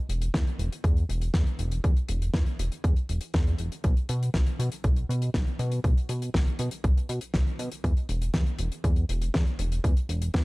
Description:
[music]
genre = italo disco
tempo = 120 BPM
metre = 4/4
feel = straight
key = unclear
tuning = A4 = 443 Hz
[part]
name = chorused synth bass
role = bass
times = 0.1-10.4 s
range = E1 to B2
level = -28 LUFS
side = equal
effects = none
[part]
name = damped 70s drum kit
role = drums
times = 0.1-10.4 s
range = hi-hat, snare drum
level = -33 LUFS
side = left 1 dB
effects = none
[part]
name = electronic kick drum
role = drums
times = 0.3-10.4 s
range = none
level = -24 LUFS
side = equal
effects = none
[sound]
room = little or no reverb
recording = dark, warm production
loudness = -24 LUFS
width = side -23 dB against mid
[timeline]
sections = 0.0-10.4 A section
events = none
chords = none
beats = 0.34 0.84 1.34 | 1.84 2.34 2.84 3.34 | 3.84 4.34 4.84 5.34 | 5.84 6.34 6.84 7.34 | 7.84 8.34 8.84 9.34 | 9.84 10.34

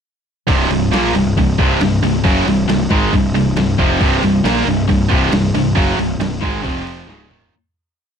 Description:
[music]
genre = heavy metal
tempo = 136 BPM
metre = 4/4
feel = straight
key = C minor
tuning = A4 = 440 Hz
[part]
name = heavy high-gain guitar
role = riff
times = 0.5-7.5 s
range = C2 to Bb3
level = -18 LUFS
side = left 11 dB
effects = distortion
[part]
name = tight distorted guitar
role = riff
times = 0.5-7.5 s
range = C2 to Bb3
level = -18 LUFS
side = right 11 dB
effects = distortion
[part]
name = fuzz picked electric bass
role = bass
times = 0.5-7.5 s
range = C1 to Bb1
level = -20 LUFS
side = equal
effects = overdrive
[part]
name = boom bap sampler-style drum kit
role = drums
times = 0.5-7.5 s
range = crash cymbal, kick drum, snare drum, toms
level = -20 LUFS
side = equal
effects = overdrive
[sound]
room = light reverb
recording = dark, warm production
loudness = -13 LUFS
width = side -7 dB against mid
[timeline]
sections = 0.5-7.5 riff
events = fade-out 5.8-7.5; drum fill 7.1-7.5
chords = 0.5 Cm; 6.6 F5; 7.1 Absus24/Db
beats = | 0.47 0.92 1.36 1.80 | 2.24 2.68 3.12 3.56 | 4.00 4.44 4.88 5.32 | 5.76 6.20 6.64 7.08

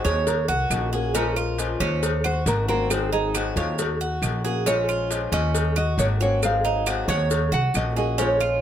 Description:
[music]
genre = latin, Cuban son and guajira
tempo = 136 BPM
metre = 4/4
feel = straight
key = unclear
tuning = A4 = 440 Hz
[part]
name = nylon-string guitar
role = melody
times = 0.0-8.6 s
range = F4 to Gb5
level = -27 LUFS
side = equal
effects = slapback echo
[part]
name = fingerpicked swing-style acoustic guitar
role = accompaniment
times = 0.0-8.6 s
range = Eb3 to Ab4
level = -30 LUFS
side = left 6 dB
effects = none
[part]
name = Cuban tres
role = arpeggios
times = 0.0-8.6 s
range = C4 to Db5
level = -27 LUFS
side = right 5 dB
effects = none
[part]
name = upright bass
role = bass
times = 0.0-8.6 s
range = Ab1 to Eb2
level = -25 LUFS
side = equal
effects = none
[part]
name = cowbell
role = percussion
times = 0.1-8.4 s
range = none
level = -30 LUFS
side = left 4 dB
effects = none
[part]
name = maracas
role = percussion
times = 0.1-8.6 s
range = none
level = -33 LUFS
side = right 9 dB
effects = none
[part]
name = claves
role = percussion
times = 0.7-8.6 s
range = none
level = -30 LUFS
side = right 5 dB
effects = none
[sound]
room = little or no reverb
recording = close, detailed microphones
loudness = -20 LUFS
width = side -10 dB against mid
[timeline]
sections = 0.0-8.6 A section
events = none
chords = 0.3 Ebm7; 1.1 Bbm7; 2.0 Ebm7; 2.9 Ab7; 3.8 Ebm7; 4.7 Bbm7; 5.5 Ebm7; 6.4 Ab6; 7.3 Ebm7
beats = 0.27 0.71 | 1.15 1.59 2.03 2.46 | 2.90 3.34 3.78 4.22 | 4.66 5.10 5.54 5.99 | 6.43 6.87 7.31 7.75 | 8.19

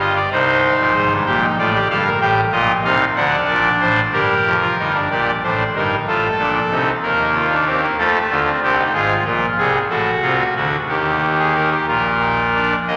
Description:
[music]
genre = classical, baroque-style 3-part fugue for pipe organ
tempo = 62 BPM (dotted quarters)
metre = 6/8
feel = straight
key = unclear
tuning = A4 = 440 Hz
[part]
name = pipe organ, trumpet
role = solo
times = 0.0-13.0 s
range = F1 to G5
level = -17 LUFS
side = equal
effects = none
[sound]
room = wet church reverb, RT60 3.1 s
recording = none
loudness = -17 LUFS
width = mono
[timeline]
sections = 0.0-5.1 A section; 5.1-12.9 B section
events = none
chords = 0.3 Cm; 1.3 Gm; 2.2 Am7b5; 3.2 D7; 4.1 Gm; 6.1 F/A; 7.0 Eb; 8.0 Dm; 8.9 Fm/Ab; 9.9 D7#9/A; 10.9 Eb; 11.9 Bb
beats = 0.31 | 1.26 2.21 | 3.16 4.13 | 5.10 6.08 | 7.03 7.98 | 8.93 9.90 | 10.89 11.88 | 12.88

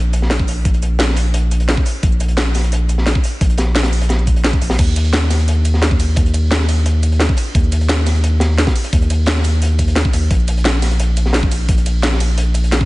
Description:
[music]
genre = liquid drum and bass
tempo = 174 BPM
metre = 4/4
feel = straight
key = unclear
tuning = A4 = 440 Hz
[part]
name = saturated sub bass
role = bass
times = 0.0-12.8 s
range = Bb1 to Eb2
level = -15 LUFS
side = equal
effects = tube saturation
[part]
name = crunchy breakbeat drum kit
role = drums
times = 0.1-12.8 s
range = hi-hat, snare drum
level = -24 LUFS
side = equal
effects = high-pass filter on hats, high-pass filter on snare, high-pass filter on room
[part]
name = drum and bass drum kit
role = drums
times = 0.1-12.8 s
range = cabasa, crash cymbal, hi-hat, ride cymbal, snare drum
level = -21 LUFS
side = equal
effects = none
[part]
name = electronic kick drum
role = drums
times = 0.4-12.9 s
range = none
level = -16 LUFS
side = equal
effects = none
[sound]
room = little or no reverb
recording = nothing above 10.3 kHz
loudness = -13 LUFS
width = side -20 dB against mid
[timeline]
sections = 0.0-12.9 A section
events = none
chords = none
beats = 0.31 | 0.65 1.00 1.34 1.69 | 2.03 2.38 2.72 3.07 | 3.41 3.75 4.10 4.45 | 4.79 5.13 5.48 5.82 | 6.17 6.51 6.86 7.20 | 7.55 7.89 8.24 8.58 | 8.93 9.27 9.62 9.96 | 10.31 10.65 11.00 11.34 | 11.69 12.03 12.38 12.72

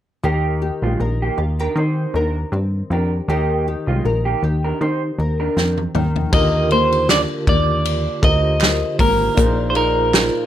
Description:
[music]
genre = indie pop, bedroom pop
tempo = 79 BPM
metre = 4/4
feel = swing 55% on 16ths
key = Eb major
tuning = A4 = 439 Hz
[part]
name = electric guitar through a small old amp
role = second line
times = 0.2-5.8 s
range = Ab3 to C5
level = -24 LUFS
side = right 4 dB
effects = lush chorus, slapback echo
[part]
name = nylon-string guitar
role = accompaniment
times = 0.2-10.5 s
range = Bb2 to Bb4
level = -25 LUFS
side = left 4 dB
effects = analog chorus, vibrato effect
[part]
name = plucky analog bass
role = bass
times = 0.2-10.3 s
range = Ab1 to Eb3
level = -20 LUFS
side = equal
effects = none
[part]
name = unplugged drum kit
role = drums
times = 5.6-10.3 s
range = hi-hat, kick drum, ride cymbal, snare drum, toms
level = -20 LUFS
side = equal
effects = none
[part]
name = clean electric guitar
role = melody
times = 6.3-10.4 s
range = Bb4 to Eb5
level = -18 LUFS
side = right 1 dB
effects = wide subtle chorus, slapback echo
[part]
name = barky tine electric piano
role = accompaniment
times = 6.3-10.5 s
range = D3 to C5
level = -25 LUFS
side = right 3 dB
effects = medium tremolo, cassette tape
[part]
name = group handclap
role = percussion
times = 7.1-10.3 s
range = none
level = -25 LUFS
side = right 15 dB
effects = none
[sound]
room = moderate small room reverb, RT60 0.5 s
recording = none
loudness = -16 LUFS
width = side -11 dB against mid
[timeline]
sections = 0.2-6.3 A section; 6.3-10.5 B section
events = drum fill 5.6-6.3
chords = 0.2 Eb6; 6.0 N.C.; 6.3 Ebmaj7; 9.4 Bb7sus4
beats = | 0.24 1.00 1.76 2.53 | 3.29 4.05 4.81 5.57 | 6.33 7.09 7.85 8.61 | 9.37 10.13

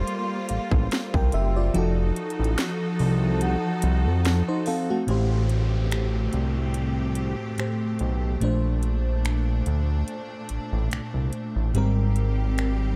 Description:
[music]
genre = contemporary R&B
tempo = 72 BPM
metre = 4/4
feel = swing 54% on 16ths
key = unclear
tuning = A4 = 440 Hz
[part]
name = FM electric piano with soft pad layer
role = accompaniment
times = 0.0-13.0 s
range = Ab2 to G5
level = -30 LUFS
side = equal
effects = chorus
[part]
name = bright studio string section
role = sustained chords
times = 0.0-13.0 s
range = Bb2 to A4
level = -35 LUFS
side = equal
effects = none
[part]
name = fat analog bass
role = bass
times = 0.0-13.0 s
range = F1 to F2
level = -26 LUFS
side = equal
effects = none
[part]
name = trap drum kit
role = drums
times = 0.1-12.8 s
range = finger snaps, hi-hat, kick drum, snare drum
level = -30 LUFS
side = equal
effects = none
[part]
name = celesta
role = texture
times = 0.5-5.5 s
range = F5 to Gb5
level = -38 LUFS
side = equal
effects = digital delay
[part]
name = downlifter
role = sound effects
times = 5.1-11.7 s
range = none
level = -44 LUFS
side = equal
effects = none
[sound]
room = little or no reverb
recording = dark, warm production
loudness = -25 LUFS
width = mono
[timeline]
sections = 0.0-5.1 A section; 5.1-13.0 B section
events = kick muted 1.7-5.1, 5.1-13.0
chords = 0.0 Gm11; 1.7 F7b9; 5.1 Am7; 8.4 Bbmaj9; 11.7 Abmaj9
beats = 0.08 0.92 | 1.75 2.58 3.42 4.25 | 5.08 5.92 6.75 7.58 | 8.41 9.25 10.08 10.91 | 11.75 12.58

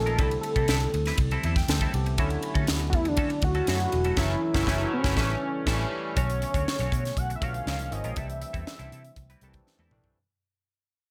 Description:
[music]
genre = polished 1980s jazz-funk pop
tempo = 120 BPM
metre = 4/4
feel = straight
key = unclear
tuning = A4 = 440 Hz
[part]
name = fat analog lead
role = melody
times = 0.0-9.7 s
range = C#4 to F#5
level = -33 LUFS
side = equal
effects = chorus
[part]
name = barky tine electric piano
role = accompaniment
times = 0.0-10.2 s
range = D3 to A5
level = -36 LUFS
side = equal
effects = overdrive, analog chorus
[part]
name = vintage muted fingered electric bass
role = bass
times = 0.0-10.1 s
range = E1 to D3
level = -31 LUFS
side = equal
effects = none
[part]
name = semi-hollow electric guitar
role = riff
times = 0.1-10.1 s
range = G3 to C#5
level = -38 LUFS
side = equal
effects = analog chorus
[part]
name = crisp fusion drum kit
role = drums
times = 0.1-10.2 s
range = crash cymbal, hi-hat, kick drum, ride cymbal, snare drum, toms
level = -31 LUFS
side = equal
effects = gated reverb
[sound]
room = little or no reverb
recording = none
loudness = -27 LUFS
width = mono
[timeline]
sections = 0.0-6.2 A section; 6.2-10.2 B section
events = tine electric piano fill 1.2-2.2; band accent 4.2-6.2; fade-out 6.2-10.2; drum fill 9.7-10.2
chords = 0.2 C6; 2.2 Dmaj7; 4.2 F#m7; 5.2 A7; 6.2 Bm9; 7.7 C#6; 8.2 C6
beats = | 0.18 0.68 1.18 1.68 | 2.18 2.68 3.18 3.68 | 4.17 4.67 5.17 5.67 | 6.17 6.67 7.17 7.67 | 8.17 8.67 9.17 9.67

